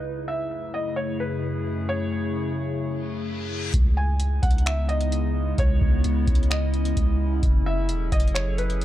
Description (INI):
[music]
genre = hip hop, atmospheric cloud-rap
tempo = 130 BPM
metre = 4/4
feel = half-time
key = C# minor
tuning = A4 = 438 Hz
[part]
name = warbly tape-like pad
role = sustained chords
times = 0.0-8.8 s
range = F#2 to A4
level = -28 LUFS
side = left 1 dB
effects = chorus, built-in reverb, phaser, sidechain pumping, low-pass filter
[part]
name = felt-muted upright piano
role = melody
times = 0.3-8.8 s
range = B4 to G#5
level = -32 LUFS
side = equal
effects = low-pass filter, tape echo
[part]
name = reverse cymbal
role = sound effects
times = 3.0-3.7 s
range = none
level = -36 LUFS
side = left 4 dB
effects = none
[part]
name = long sustained 808-style bass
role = bass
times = 3.7-8.8 s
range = E1 to C#2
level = -24 LUFS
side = equal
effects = none
[part]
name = booming analog drum machine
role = drums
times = 3.7-8.8 s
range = finger snaps, hi-hat, kick drum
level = -22 LUFS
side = equal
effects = none
[sound]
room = digital ambience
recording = dark, warm production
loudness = -22 LUFS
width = side -13 dB against mid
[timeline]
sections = 0.0-3.7 A section; 3.7-8.8 B section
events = filter sweep 0.0-3.7; reverse cymbal 3.0-3.7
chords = 0.0 F#m7; 3.7 C#m7; 7.4 F#m7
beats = | 0.04 0.51 0.97 1.43 | 1.89 2.35 2.81 3.27 | 3.74 4.20 4.66 5.12 | 5.58 6.04 6.51 6.97 | 7.43 7.89 8.35 8.81